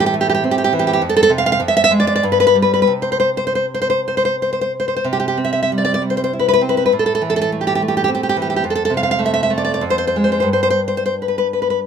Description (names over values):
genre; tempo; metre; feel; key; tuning
romantic piece for solo classical guitar; 81-109 BPM; 3/4; rubato; C major; A4 = 439 Hz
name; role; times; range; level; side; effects
nylon-string guitar; solo; 0.0-11.9 s; F2 to F5; -14 LUFS; equal; none
room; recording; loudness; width
light reverb; minimal, uncompressed stereo recording; -14 LUFS; side -7 dB against mid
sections
0.0-5.1 A section; 5.1-11.9 B section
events
none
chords
0.0 Am; 1.0 F5; 1.6 Fmmaj7; 2.2 N.C.; 5.1 C; 6.9 Am; 8.6 F; 9.8 Fm; 10.5 N.C.